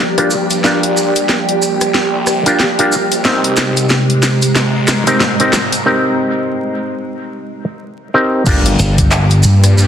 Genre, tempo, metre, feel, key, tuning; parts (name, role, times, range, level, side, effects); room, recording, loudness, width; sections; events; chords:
glitch hop; 92 BPM; 4/4; swing 59% on 16ths; G phrygian; A4 = 441 Hz
warbly tape-like pad; sustained chords; 0.0-9.9 s; C3 to G4; -20 LUFS; right 1 dB; chorus, built-in reverb, sidechain pumping
phased detuned saw bass; bass; 0.0-9.9 s; G1 to G2; -18 LUFS; equal; phaser, tube saturation, high-pass filter
granular cloud pad; texture; 0.0-5.9 s; Ab3 to Bb5; -19 LUFS; right 1 dB; built-in reverb, sidechain pumping
auto-wah clav; stabs; 0.2-9.9 s; C4 to Bb4; -16 LUFS; equal; overdrive, sidechain pumping, low-pass filter, dub echo
drum and bass drum kit; drums; 0.2-9.7 s; crash cymbal, handclaps, hi-hat, rim click, snare drum; -17 LUFS; left 1 dB; soft clipping on snare
maracas; percussion; 0.3-9.9 s; -22 LUFS; right 2 dB
electronic kick drum; drums; 8.5-9.1 s; -14 LUFS; equal
impact; sound effects; 8.5-9.9 s; -22 LUFS; equal
glassy slap bass; bass; 8.8-9.4 s; G1; -11 LUFS; equal
moderate lush hall reverb, RT60 2.3 s; dense, heavily limited modern master, vinyl crackle; -11 LUFS; side -9 dB against mid
0.0-8.5 A section; 8.5-9.9 B section
build-up 0.0-8.5; drum fill 0.0-5.9; filter sweep on ambient pad 0.0-8.5; break 5.9-8.5; drop 8.5-9.9; impact 8.5-9.9
0.0 Gm7; 3.2 Abmaj7; 8.5 Gm7